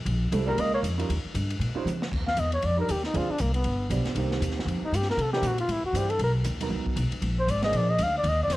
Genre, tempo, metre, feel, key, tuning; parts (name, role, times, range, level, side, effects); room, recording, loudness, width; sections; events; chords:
jazz, small-group swing and bop; 235 BPM; 4/4; swing 60% on 8ths; A4 = 440 Hz
upright bass; bass; 0.0-8.6 s; G1 to Db3; -27 LUFS; equal
swinging big-band drum kit; drums; 0.1-8.6 s; crash cymbal, hi-hat, kick drum, ride cymbal, snare drum, toms; -34 LUFS; left 1 dB
warm upright piano; accompaniment; 0.3-8.0 s; Eb3 to C5; -34 LUFS; right 6 dB; cassette tape
mellow flugelhorn; melody; 0.5-8.6 s; Bb3 to F5; -27 LUFS; left 1 dB
mellow tenor saxophone; second line; 0.5-0.8 s; G3 to Bb3; -35 LUFS; right 6 dB; cassette tape
small room reverb; home recording on cassette; -24 LUFS; side -17 dB against mid
0.0-2.1 A section; 2.1-8.6 B section
drum fill 1.9; flugelhorn solo 2.1-8.6
0.1 Bbm7; 1.1 Eb7; 2.1 N.C.; 3.1 Dm7b5; 3.6 G7; 4.2 Cm7; 5.2 C9; 6.2 Bmaj7; 7.2 Bb7